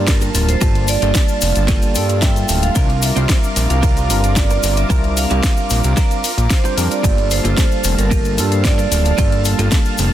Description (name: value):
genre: nu-disco, nu disco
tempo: 112 BPM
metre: 4/4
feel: straight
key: G dorian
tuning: A4 = 440 Hz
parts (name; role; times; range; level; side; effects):
- vibraphone with medium hard mallets; melody; 0.0-9.4 s; Bb4 to G5; -23 LUFS; right 5 dB; ping-pong delay
- tine electric piano; accompaniment; 0.0-10.1 s; G3 to A5; -23 LUFS; left 1 dB; medium stereo tremolo, sidechain pumping, tape echo
- lush unison pad; sustained chords; 0.0-10.1 s; F4 to D6; -27 LUFS; equal; chorus, sidechain pumping
- fat analog bass; bass; 0.0-10.1 s; D1 to G2; -17 LUFS; equal; none
- electronic kick drum; drums; 0.1-9.8 s; none; -16 LUFS; equal; overdrive
- house drum kit; drums; 0.1-10.1 s; hi-hat, ride cymbal, snare drum; -23 LUFS; left 1 dB; overdrive
- cabasa; percussion; 0.1-10.1 s; none; -28 LUFS; left 4 dB; none
- direct-recorded clean electric guitar; riff; 0.2-10.0 s; Bb3 to G5; -27 LUFS; right 3 dB; wide subtle chorus, tape echo
room: little or no reverb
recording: dense, heavily limited modern master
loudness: -13 LUFS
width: side -12 dB against mid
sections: 0.0-10.1 A section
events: clean electric guitar fill 1.7-2.8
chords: 0.0 Gm9; 2.8 C9sus4; 7.0 Gm9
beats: 0.08 | 0.61 1.15 1.69 2.22 | 2.76 3.29 3.83 4.36 | 4.90 5.44 5.97 6.51 | 7.04 7.58 8.11 8.65 | 9.19 9.72